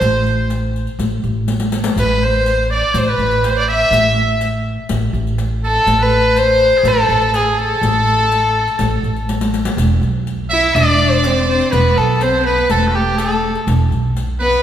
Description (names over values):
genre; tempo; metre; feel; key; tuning
Arabic maqam ensemble; 123 BPM; 4/4; straight; A maqam nahawand, E maqam bayati from 9.8 s; A4 = 440 Hz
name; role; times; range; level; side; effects
warm violin; melody; 0.0-14.6 s; G4 to E5; -15 LUFS; left 1 dB; none
trumpet with metal mute; second line; 0.0-14.6 s; F4+49c to E5; -22 LUFS; right 4 dB; none
upright bass; bass; 0.0-14.5 s; E1 to B1; -18 LUFS; right 1 dB; none
riq; percussion; 0.0-14.6 s; none; -24 LUFS; left 2 dB; none
clear cello; second line; 10.5-14.6 s; A3 to E4; -21 LUFS; left 3 dB; none
room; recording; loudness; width
wet scoring stage reverb, RT60 2.0 s; recorded in a church or concert hall; -13 LUFS; side -10 dB against mid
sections
0.0-9.8 A section; 9.8-14.6 B section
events
drum fill 1.5-2.0, 9.3-9.8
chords
none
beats
| 0.02 0.51 0.99 1.48 | 1.97 2.46 2.94 3.43 | 3.92 4.41 4.89 5.38 | 5.87 6.36 6.84 7.33 | 7.82 8.31 8.79 9.28 | 9.77 10.26 10.74 11.23 | 11.72 12.21 12.70 13.18 | 13.67 14.16